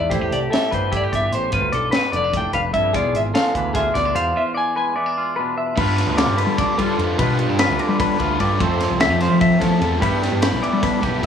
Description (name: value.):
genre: math rock and midwest emo.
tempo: 297 BPM (eighths).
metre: 7/8.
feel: straight.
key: unclear.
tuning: A4 = 440 Hz.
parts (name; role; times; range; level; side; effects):
clean electric guitar; melody; 0.0-5.5 s; A4 to G#5; -22 LUFS; left 1 dB; none.
twangy electric guitar; accompaniment; 0.0-11.3 s; E2 to G4; -26 LUFS; right 6 dB; none.
clean electric guitar; arpeggios; 0.0-11.2 s; G4 to E5; -23 LUFS; left 4 dB; digital delay.
growling picked electric bass; bass; 0.0-11.3 s; E1 to G3; -22 LUFS; left 1 dB; overdrive.
crisp fusion drum kit; drums; 0.1-11.3 s; crash cymbal, hi-hat, kick drum, ride cymbal, snare drum; -24 LUFS; equal; none.
overdriven electric guitar; riff; 5.8-11.3 s; F3 to B4; -23 LUFS; right 1 dB; none.
room: light reverb.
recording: worn, warbling old tape, cassette tape, warbly pitch drift.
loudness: -17 LUFS.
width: side -8 dB against mid.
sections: 0.0-5.8 A section; 5.8-11.3 B section.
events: break 4.4-5.8.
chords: 0.1 Am11; 1.5 G7; 2.9 E7b9; 5.8 G7; 8.6 Fmaj7; 10.0 Em7.